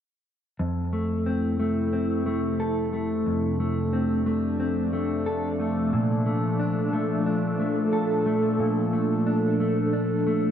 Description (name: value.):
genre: dream pop.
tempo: 90 BPM.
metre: 4/4.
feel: straight.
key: F major.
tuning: A4 = 440 Hz.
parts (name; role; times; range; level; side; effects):
warbly tape-like pad; sustained chords; 1.2-10.5 s; Bb2 to A4; -26 LUFS; right 2 dB; chorus, built-in reverb, phaser.
mellow electric guitar; arpeggios; 0.6-10.5 s; F2 to A4; -25 LUFS; left 2 dB; lush chorus, tape echo.
room: moderate plate reverb, RT60 2.4 s.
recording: none.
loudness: -23 LUFS.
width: side -9 dB against mid.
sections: 0.6-10.5 A section.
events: none.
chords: 0.6 Fmaj7; 5.9 Bbmaj7.